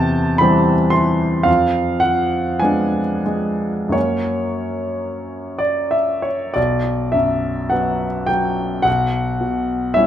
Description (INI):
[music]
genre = classical, romantic nocturne for solo piano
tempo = 43-58 BPM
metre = 4/4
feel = rubato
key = unclear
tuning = A4 = 440 Hz
[part]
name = clear grand piano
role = solo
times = 0.0-10.1 s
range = B1 to C6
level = -16 LUFS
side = equal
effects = none
[sound]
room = moderate large studio reverb, RT60 0.9 s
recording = minimal, uncompressed stereo recording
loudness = -16 LUFS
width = side -10 dB against mid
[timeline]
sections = 0.0-10.1 A section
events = none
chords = 0.0 C/E; 1.5 Fdim7; 3.9 F#; 6.6 B5; 8.9 C#m7/B (rootless)